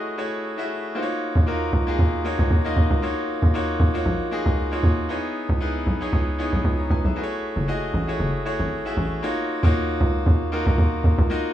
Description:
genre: amapiano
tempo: 116 BPM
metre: 4/4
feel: swing 55% on 16ths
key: unclear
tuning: A4 = 439 Hz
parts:
  - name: bright concert grand piano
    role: accompaniment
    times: 0.0-11.5 s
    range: A3 to Bb5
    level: -25 LUFS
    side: left 1 dB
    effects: none
  - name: tight log drum bass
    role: bass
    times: 1.4-11.3 s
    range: Gb1 to Eb2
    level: -20 LUFS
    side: equal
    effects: none
room: studio reverb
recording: small room ambience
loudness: -20 LUFS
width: side -12 dB against mid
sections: 0.0-9.2 A section; 9.2-11.5 B section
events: drop 9.2-11.5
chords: 0.0 Gbm9; 1.0 Ebm9; 5.1 Dbm9; 7.2 Gbm9; 9.2 Ebm9

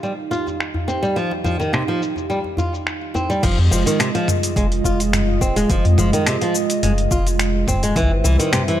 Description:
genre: organic downtempo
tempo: 106 BPM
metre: 4/4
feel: swing 54% on 16ths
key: F minor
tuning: A4 = 440 Hz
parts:
  - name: warm analog pad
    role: sustained chords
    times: 0.0-8.8 s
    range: G3 to F5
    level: -24 LUFS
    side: right 3 dB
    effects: chorus, sidechain pumping
  - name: flamenco guitar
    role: arpeggios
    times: 0.0-8.8 s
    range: C3 to F4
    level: -21 LUFS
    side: equal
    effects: ping-pong delay
  - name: dusty soul sampler-style drum kit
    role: drums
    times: 0.0-8.8 s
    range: crash cymbal, finger snaps, hi-hat, shaker, toms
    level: -23 LUFS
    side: equal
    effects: overdrive, low-pass filter on perc, low-pass filter on snare, low-pass filter on hats, low-pass filter on toms, low-pass filter on cymbals
  - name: djembe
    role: percussion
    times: 0.3-3.3 s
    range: none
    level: -27 LUFS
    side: left 1 dB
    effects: none
  - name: warm sub bass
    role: bass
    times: 3.4-8.4 s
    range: Eb1 to F2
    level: -19 LUFS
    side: equal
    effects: sidechain pumping
  - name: electronic kick drum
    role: drums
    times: 3.4-8.1 s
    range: none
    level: -22 LUFS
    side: equal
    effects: none
room: light reverb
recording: none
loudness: -16 LUFS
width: side -12 dB against mid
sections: 0.0-3.4 A section; 3.4-8.8 B section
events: none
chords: 0.0 Ebadd9; 3.4 Fm7; 8.0 C

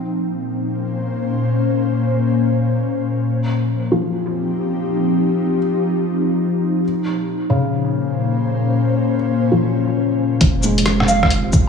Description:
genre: future garage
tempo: free time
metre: none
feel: none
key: unclear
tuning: A4 = 440 Hz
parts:
  - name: ethereal airy pad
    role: sustained chords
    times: 0.0-11.7 s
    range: Bb2 to G5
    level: -18 LUFS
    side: left 2 dB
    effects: ensemble chorus, built-in reverb, sidechain pumping
  - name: felt-muted upright piano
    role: accompaniment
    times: 3.9-11.7 s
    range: Db3 to Ab3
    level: -22 LUFS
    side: left 1 dB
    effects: sidechain pumping, low-pass filter, dub echo
  - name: soft 808-style bass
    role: bass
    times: 10.4-11.7 s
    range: F1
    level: -22 LUFS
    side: equal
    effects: sidechain pumping
  - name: electronic kick drum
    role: drums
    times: 10.4-11.6 s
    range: none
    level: -15 LUFS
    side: equal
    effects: overdrive
  - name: lo-fi sampler-style drum kit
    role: drums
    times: 10.4-11.6 s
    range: cabasa, hi-hat, rim click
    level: -20 LUFS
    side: equal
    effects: low-pass filter on hats, low-pass filter on snare, low-pass filter on perc
  - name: soft struck synth lead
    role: melody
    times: 11.1-11.3 s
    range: F5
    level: -19 LUFS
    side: right 2 dB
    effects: chorus
room: wet lush hall reverb, RT60 1.7 s, digital ambience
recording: studio ambience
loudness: -16 LUFS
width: side -6 dB against mid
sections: 0.0-10.4 A section; 10.4-11.7 B section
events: none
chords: 0.0 Bbm; 3.2 F5; 6.8 Bbm; 10.4 Fm7

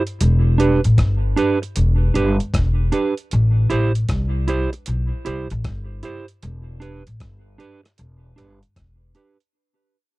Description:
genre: roots reggae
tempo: 77 BPM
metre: 4/4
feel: swing 64% on 16ths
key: unclear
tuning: A4 = 442 Hz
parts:
  - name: mellow electric guitar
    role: accompaniment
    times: 0.0-9.4 s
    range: D4 to C5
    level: -22 LUFS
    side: right 4 dB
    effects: tape echo
  - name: dusty soul sampler-style drum kit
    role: drums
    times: 0.1-9.5 s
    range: hi-hat, kick drum, rim click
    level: -24 LUFS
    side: equal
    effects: overdrive
  - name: upright bass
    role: bass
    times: 0.2-9.1 s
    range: E1 to C2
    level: -18 LUFS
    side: equal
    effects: none
room: little or no reverb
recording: dry, close 1970s-style studio recording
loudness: -17 LUFS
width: side -20 dB against mid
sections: 0.0-9.5 A section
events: fade-out 0.0-9.5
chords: 0.2 Em7; 3.3 Am7; 6.4 Em7

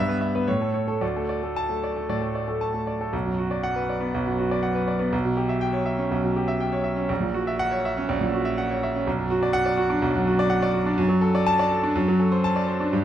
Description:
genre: classical, virtuoso piano study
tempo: 109-128 BPM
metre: 4/4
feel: rubato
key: B minor from 3.1 s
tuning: A4 = 440 Hz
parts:
  - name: bright grand piano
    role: solo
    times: 0.0-13.0 s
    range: A#1 to A5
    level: -22 LUFS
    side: equal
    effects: none
room: moderate stone room reverb, RT60 1.2 s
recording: dark, warm production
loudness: -22 LUFS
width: side -11 dB against mid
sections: 0.0-3.1 A section; 3.1-13.0 B section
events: none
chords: 0.5 A; 1.0 D5; 3.1 Bm; 5.1 C#m7b5/B; 7.1 F#7/A#; 9.1 Bm; 11.0 D/F#; 11.9 D7/F#

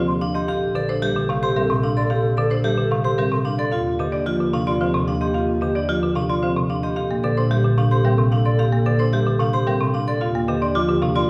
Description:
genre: classical, minimalist pattern music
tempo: 111 BPM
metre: 3/4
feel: straight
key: Bb major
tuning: A4 = 440 Hz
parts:
  - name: buzzing marimba with hard mallets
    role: melody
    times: 0.0-11.3 s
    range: G4 to F5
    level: -31 LUFS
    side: equal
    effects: none
  - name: hollow alto flute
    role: second line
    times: 0.0-11.3 s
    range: G4 to A4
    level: -32 LUFS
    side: equal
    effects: none
  - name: folk marimba with hard mallets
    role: accompaniment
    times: 0.0-11.2 s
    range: C3 to Bb3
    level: -26 LUFS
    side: equal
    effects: none
  - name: vibraphone with hard mallets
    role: arpeggios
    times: 0.0-11.3 s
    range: C4 to A4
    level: -26 LUFS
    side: equal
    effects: none
  - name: clear studio double bass section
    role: bass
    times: 0.0-11.3 s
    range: Bb1 to Eb2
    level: -26 LUFS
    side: equal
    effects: none
  - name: mellow hollow concert flute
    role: arpeggios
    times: 0.1-11.2 s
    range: F5 to D6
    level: -32 LUFS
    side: equal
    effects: none
room: wet recital hall reverb, RT60 1.7 s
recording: heard from further back in the room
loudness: -21 LUFS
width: mono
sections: 0.0-11.3 A section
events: none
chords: 0.5 Bbmaj9; 3.7 Eb69; 7.0 Bbmaj9; 10.2 Eb69

